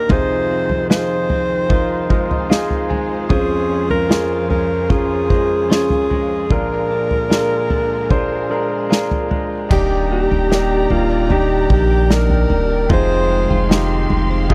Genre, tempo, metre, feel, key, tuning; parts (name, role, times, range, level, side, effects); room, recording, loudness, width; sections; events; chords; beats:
pop ballad; 75 BPM; 4/4; straight; Eb major; A4 = 438 Hz
warm alto saxophone; melody; 0.0-13.7 s; F4 to C5; -22 LUFS; equal
clear concert grand piano; accompaniment; 0.0-14.5 s; F2 to Ab5; -24 LUFS; equal
warm studio string section; sustained chords; 0.0-14.5 s; F2 to C6; -30 LUFS; equal
direct-recorded clean electric guitar; arpeggios; 0.0-14.5 s; F2 to G4; -28 LUFS; equal; analog chorus
unplugged drum kit; drums; 0.1-14.5 s; crash cymbal, kick drum, snare drum, toms; -20 LUFS; equal
saturated sub bass; bass; 9.7-14.5 s; Eb1 to Bb1; -21 LUFS; equal
little or no reverb; dry, close 1970s-style studio recording; -17 LUFS; mono
0.0-9.7 A section; 9.7-14.5 B section
grand piano fill 1.7-3.3
0.1 Fm7; 3.3 Dbmaj7/F; 6.5 Bb7; 9.7 Ebmaj7; 12.9 Fm7
| 0.10 0.90 1.70 2.50 | 3.30 4.10 4.90 5.70 | 6.50 7.30 8.10 8.90 | 9.70 10.50 11.30 12.10 | 12.90 13.70 14.50